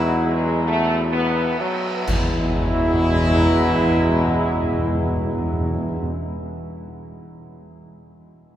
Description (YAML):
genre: classical, ceremonial fanfare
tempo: 64 BPM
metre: 3/4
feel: straight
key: E major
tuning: A4 = 440 Hz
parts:
  - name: dark trumpet section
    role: melody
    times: 0.0-6.1 s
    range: E4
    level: -28 LUFS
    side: equal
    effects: none
  - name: clear French horn section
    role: sustained chords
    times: 0.0-6.1 s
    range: F#3 to E4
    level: -24 LUFS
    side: equal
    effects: none
  - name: warm trombone section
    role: sustained chords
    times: 0.0-6.1 s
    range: B2 to F#3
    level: -28 LUFS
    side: left 1 dB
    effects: none
  - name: mellow tuba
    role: bass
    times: 0.0-6.1 s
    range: E2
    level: -22 LUFS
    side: equal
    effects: none
  - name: timpani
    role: percussion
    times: 0.0-6.1 s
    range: E2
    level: -25 LUFS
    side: equal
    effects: none
  - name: clash cymbals and concert bass drum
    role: percussion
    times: 2.1-3.9 s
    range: none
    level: -29 LUFS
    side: equal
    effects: none
room: wet cathedral reverb, RT60 5.9 s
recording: in a vast, echoing space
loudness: -18 LUFS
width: side -11 dB against mid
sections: 0.0-2.1 A section; 2.1-7.7 B section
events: slowing down 0.0-2.1; band accent 2.1-3.0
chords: 0.0 Eadd9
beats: 0.24 1.13 | 2.08 3.01 3.94 | 4.88 5.82